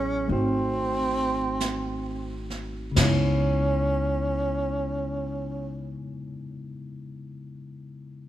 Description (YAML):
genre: jazz ballad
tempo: 43 BPM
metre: 4/4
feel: swing 66% on 8ths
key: C# harmonic minor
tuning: A4 = 440 Hz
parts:
  - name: breathy tenor saxophone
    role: melody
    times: 0.0-6.0 s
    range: B#3 to C#4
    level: -28 LUFS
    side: right 2 dB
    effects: none
  - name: tine electric piano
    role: accompaniment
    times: 0.0-8.3 s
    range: C#3 to G#4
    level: -30 LUFS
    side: left 2 dB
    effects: none
  - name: upright bass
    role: bass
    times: 0.0-5.9 s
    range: G#1 to C#2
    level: -31 LUFS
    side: equal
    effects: none
  - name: jazz brush drum kit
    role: drums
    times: 0.3-3.6 s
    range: brushed snare drum, crash cymbal, hi-hat, snare drum, toms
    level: -28 LUFS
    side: right 1 dB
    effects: none
room: light reverb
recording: minimal, uncompressed stereo recording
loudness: -24 LUFS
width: side -13 dB against mid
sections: 0.0-3.0 A section; 3.0-8.3 B section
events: slowing down 0.0-3.0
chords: 0.3 G#7b9; 3.0 C#m7